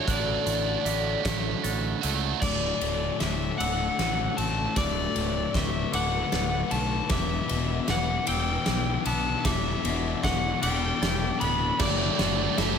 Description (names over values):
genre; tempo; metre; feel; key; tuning
post-rock; 51 BPM (dotted quarters); 6/8; straight; D major; A4 = 436 Hz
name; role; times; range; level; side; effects
overdriven slide guitar; melody; 0.0-12.8 s; C#5 to B5; -30 LUFS; left 1 dB; slapback echo
dark symphonic string section; sustained chords; 0.0-12.8 s; D3 to B4; -40 LUFS; equal; none
glockenspiel with brass mallets; arpeggios; 0.0-12.6 s; C#6 to B6; -38 LUFS; equal; slapback echo
twangy electric guitar; arpeggios; 0.0-12.8 s; D2 to F#4; -37 LUFS; left 2 dB; slapback echo
distorted electric guitar; riff; 0.0-2.4, 11.8-12.8 s; D2 to F#4; -29 LUFS; right 14 dB; overdrive
fuzz fingered electric bass; bass; 0.1-12.8 s; D1 to C#2; -31 LUFS; equal; overdrive
big rock drum kit; drums; 0.1-12.8 s; crash cymbal, hi-hat, kick drum, ride cymbal, snare drum; -30 LUFS; equal; none
thick fuzz guitar; riff; 2.4-12.8 s; D2 to B2; -32 LUFS; left 11 dB; distortion
room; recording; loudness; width
light reverb, small room ambience; none; -24 LUFS; side -7 dB against mid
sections
0.0-2.4 A section; 2.4-12.8 B section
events
build-up 2.4-12.8; drum fill 2.4-12.8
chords
0.0 D/A; 2.4 D; 7.1 Em7; 11.8 D/F#